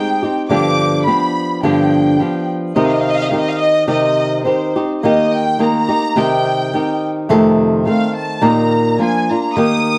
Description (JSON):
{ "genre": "mexican folk", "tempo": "106 BPM", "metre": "2/4", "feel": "straight", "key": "C harmonic minor, Eb major from 5.0 s", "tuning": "A4 = 437 Hz", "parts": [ { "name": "warm studio violin section", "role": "melody", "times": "0.0-10.0 s", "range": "C5 to Eb6", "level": "-20 LUFS", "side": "equal", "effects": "plate reverb" }, { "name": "flamenco guitar", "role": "accompaniment", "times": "0.0-10.0 s", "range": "F2 to A4", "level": "-17 LUFS", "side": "equal", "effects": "none" } ], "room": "moderate studio reverb, RT60 0.6 s", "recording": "dark, warm production", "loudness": "-15 LUFS", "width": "mono", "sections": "0.0-5.0 A section; 5.0-10.0 B section", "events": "none", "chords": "0.5 G7; 2.7 Cm; 5.0 Eb; 6.2 Cm; 7.3 F7; 8.4 Eb/Bb; 9.0 Bb", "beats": "| 0.48 1.05 | 1.62 2.18 | 2.75 3.31 | 3.88 4.45 | 5.03 5.60 | 6.17 6.74 | 7.30 7.86 | 8.42 8.99 | 9.55" }